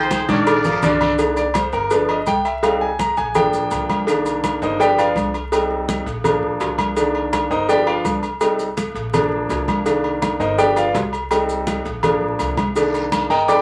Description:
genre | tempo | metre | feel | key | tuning
latin, salsa | 166 BPM | 4/4 | straight | C minor | A4 = 440 Hz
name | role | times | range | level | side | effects
bright trumpet section | melody | 0.0-1.0 s | Ab4 to D5 | -25 LUFS | equal | none
clear baritone saxophone | second line | 0.0-1.0 s | Eb3 to F3 | -31 LUFS | equal | none
bright concert grand piano | accompaniment | 0.0-13.6 s | D3 to D6 | -22 LUFS | equal | none
upright bass | bass | 0.0-13.6 s | G1 to C2 | -33 LUFS | equal | none
agogo bells and timbales | percussion | 0.1-13.6 s | none | -27 LUFS | equal | none
congas | percussion | 0.1-13.6 s | none | -28 LUFS | equal | none
cowbell | percussion | 0.1-13.6 s | none | -25 LUFS | equal | none
guiro | percussion | 0.1-1.2, 12.8-13.6 s | none | -36 LUFS | equal | none
maracas | percussion | 0.1-13.6 s | none | -41 LUFS | equal | none
room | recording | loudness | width
wet small room ambience, RT60 0.5 s | vinyl crackle | -19 LUFS | mono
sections
0.0-1.2 A section; 1.2-13.6 B section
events
drum fill 0.3-1.2; grand piano solo 1.2-13.6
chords
0.5 Bb; 1.2 Cm7; 1.9 G7; 2.6 Cm; 3.4 Bb; 4.1 Cm7; 4.8 G7; 5.5 Cm; 6.2 Bb; 7.0 Cm7; 7.7 G7; 8.4 Cm; 9.1 Bb; 9.9 Cm7; 10.6 G7; 11.3 Cm; 12.0 Bb; 12.8 Cm7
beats
0.11 0.47 0.83 | 1.19 1.55 1.91 2.27 | 2.63 2.99 3.35 3.71 | 4.08 4.44 4.80 5.16 | 5.52 5.88 6.24 6.61 | 6.97 7.33 7.69 8.05 | 8.41 8.78 9.14 9.50 | 9.86 10.22 10.59 10.95 | 11.31 11.67 12.04 12.40 | 12.76 13.12 13.48

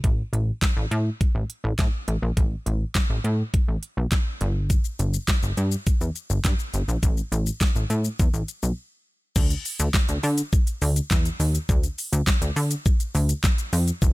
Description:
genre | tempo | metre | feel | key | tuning
dance-pop | 103 BPM | 4/4 | straight | unclear | A4 = 440 Hz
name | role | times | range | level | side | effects
plucky analog bass | bass | 0.0-14.1 s | E1 to D3 | -23 LUFS | equal | sidechain pumping
pop drum kit | drums | 0.0-14.1 s | crash cymbal, handclaps, hi-hat, kick drum, shaker, snare drum | -23 LUFS | equal | none
room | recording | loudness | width
digital ambience | none | -21 LUFS | side -20 dB against mid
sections
0.0-9.4 A section; 9.4-14.1 B section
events
break 8.8-9.4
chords
none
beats
| 0.04 0.62 1.21 1.79 | 2.37 2.95 3.54 4.12 | 4.70 5.28 5.87 6.45 | 7.03 7.61 8.20 8.78 | 9.36 9.94 10.53 11.11 | 11.69 12.27 12.86 13.44 | 14.02

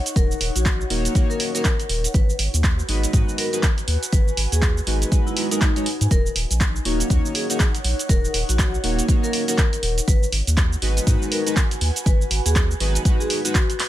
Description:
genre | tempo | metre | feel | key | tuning
deep house | 121 BPM | 4/4 | swing 60% on 16ths | G# minor | A4 = 440 Hz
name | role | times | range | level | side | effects
airy breathy pad | texture | 0.0-13.9 s | D#4 to G#5 | -33 LUFS | right 1 dB | chorus, phaser, sidechain pumping
punchy analog drum machine | drums | 0.1-13.9 s | handclaps, hi-hat, shaker | -25 LUFS | right 2 dB | none
vibraphone with medium hard mallets | melody | 0.2-13.9 s | D#4 to B4 | -30 LUFS | left 2 dB | digital delay
round analog bass | bass | 0.2-13.0 s | D#1 to G#2 | -22 LUFS | equal | tube saturation, sidechain pumping
electronic kick drum | drums | 0.2-13.7 s | none | -19 LUFS | equal | overdrive
chorused polysynth | stabs | 0.9-13.5 s | G#3 to C#5 | -26 LUFS | equal | sidechain pumping
room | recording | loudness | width
digital ambience | none | -18 LUFS | side -14 dB against mid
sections
0.0-13.9 A section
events
none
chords
0.0 D#m7; 2.1 G#m7; 6.1 D#m7; 10.1 G#m7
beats
| 0.16 0.66 1.15 1.65 | 2.14 2.64 3.13 3.63 | 4.13 4.62 5.12 5.61 | 6.11 6.61 7.10 7.60 | 8.09 8.59 9.09 9.58 | 10.08 10.57 11.07 11.56 | 12.06 12.56 13.05 13.55

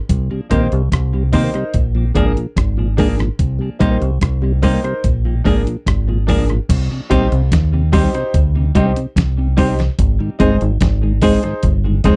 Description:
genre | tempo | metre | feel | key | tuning
roots reggae | 73 BPM | 4/4 | straight | C minor | A4 = 440 Hz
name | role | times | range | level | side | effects
deep dub fingered electric bass | bass | 0.1-12.2 s | F1 to Eb2 | -19 LUFS | equal | none
dusty soul sampler-style drum kit | drums | 0.1-12.2 s | crash cymbal, hi-hat, kick drum, rim click, snare drum | -21 LUFS | equal | none
mellow tonewheel organ | accompaniment | 0.3-12.2 s | Ab2 to Eb4 | -23 LUFS | equal | slow rotary speaker
clean electric guitar | accompaniment | 0.5-12.2 s | Eb3 to Ab4 | -21 LUFS | equal | tape echo
warm concert grand piano | stabs | 0.5-12.2 s | D4 to C5 | -24 LUFS | equal | none
room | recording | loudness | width
little or no reverb | dry, close 1970s-style studio recording | -16 LUFS | mono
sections
0.0-6.7 A section; 6.7-12.2 B section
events
none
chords
0.1 Cm7; 1.7 Bb7; 3.4 Cm7; 5.0 Bb7; 6.7 Cm; 10.0 Ab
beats
| 0.09 0.92 1.74 2.57 | 3.39 4.22 5.04 5.87 | 6.69 7.52 8.34 9.16 | 9.99 10.81 11.63

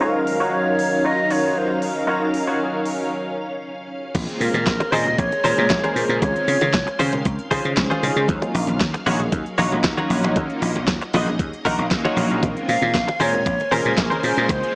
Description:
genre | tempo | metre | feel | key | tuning
nu-disco, nu disco | 116 BPM | 4/4 | straight | Eb dorian | A4 = 440 Hz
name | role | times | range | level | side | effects
breathy hollow jazz flute | melody | 0.0-7.2, 12.7-14.8 s | Bb4 to F5 | -23 LUFS | equal | none
warm analog pad | accompaniment | 0.0-14.8 s | Db3 to F5 | -24 LUFS | equal | chorus, sidechain pumping
string machine, full ensemble | sustained chords | 0.0-14.8 s | Eb3 to C6 | -32 LUFS | equal | ensemble chorus, sidechain pumping
direct-recorded clean electric guitar | riff | 0.0-14.5 s | Db4 to Eb5 | -24 LUFS | equal | ensemble chorus, low-pass filter
pop drum kit | drums | 0.3-14.7 s | crash cymbal, hi-hat, snare drum | -26 LUFS | equal | studio reverb
dry thumbed slap bass | bass | 4.1-14.6 s | Bb1 to Db3 | -22 LUFS | equal | tube saturation
electronic kick drum | drums | 4.1-14.6 s | none | -25 LUFS | equal | studio reverb
congas and cabasa | percussion | 4.1-14.7 s | none | -28 LUFS | equal | none
room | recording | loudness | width
light reverb | small speaker sound | -18 LUFS | side -29 dB against mid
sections
0.0-4.2 A section; 4.2-14.8 B section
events
break 3.1-4.2; drop 4.2-14.8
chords
0.0 Ebm9; 4.2 Bbm9; 6.2 Dbmaj7; 8.3 Ebm9; 12.4 Bbm9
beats
| 0.01 0.53 1.05 1.56 | 2.08 2.60 3.12 3.63 | 4.15 4.67 5.19 5.70 | 6.22 6.74 7.25 7.77 | 8.29 8.81 9.32 9.84 | 10.36 10.88 11.39 11.91 | 12.43 12.95 13.46 13.98 | 14.50

